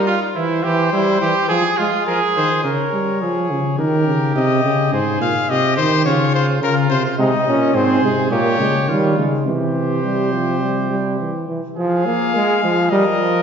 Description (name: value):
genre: classical, imitative canzona for brass ensemble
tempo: 105 BPM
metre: 4/4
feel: straight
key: Bb minor, F minor from 7.2 s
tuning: A4 = 440 Hz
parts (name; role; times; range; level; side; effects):
- clear trumpet; melody; 0.0-13.4 s; Ab4 to F5; -22 LUFS; left 6 dB; none
- warm trombone; accompaniment; 0.0-2.5, 7.2-13.4 s; Eb3 to Db4; -19 LUFS; right 1 dB; none
- clear trumpet; second line; 0.1-13.4 s; Eb4 to Bb4; -22 LUFS; right 3 dB; none
- mellow bass trombone; bass; 2.6-11.5 s; Ab2 to G3; -19 LUFS; right 1 dB; none
room: wet scoring stage reverb, RT60 1.6 s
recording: heard from further back in the room, nothing above 7.5 kHz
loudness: -15 LUFS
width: side -7 dB against mid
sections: 0.0-2.6 A section; 2.6-11.8 B section; 11.8-13.4 C section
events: none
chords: 0.4 C/E; 1.5 Fm; 2.6 Bbm/Db; 3.8 Eb; 4.9 Ab; 6.1 Db; 7.2 Ab; 8.3 Bbm; 9.5 C; 11.8 Fm; 12.9 Gm